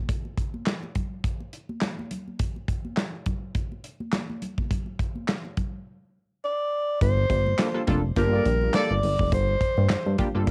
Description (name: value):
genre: early-eighties boogie funk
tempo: 104 BPM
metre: 4/4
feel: swing 56% on 16ths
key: G minor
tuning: A4 = 440 Hz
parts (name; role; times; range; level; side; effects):
- modern studio drum kit; drums; 0.1-10.5 s; handclaps, hi-hat, kick drum, snare drum; -30 LUFS; equal; cassette tape
- congas; percussion; 0.1-10.5 s; none; -40 LUFS; equal; none
- breathy alto saxophone; melody; 6.4-10.2 s; Bb4 to D5; -29 LUFS; equal; cassette tape
- chorused synth bass; bass; 7.0-10.5 s; F1 to G2; -26 LUFS; equal; none
- funky polysynth comp; accompaniment; 7.6-10.5 s; G3 to A4; -30 LUFS; equal; chorus, cassette tape
- warm horn section; second line; 8.3-8.9 s; Bb3 to D5; -29 LUFS; equal; cassette tape
room: little or no reverb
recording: home recording on cassette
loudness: -26 LUFS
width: mono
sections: 0.0-7.0 A section; 7.0-10.5 B section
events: none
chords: 0.0 N.C.; 7.0 Gm9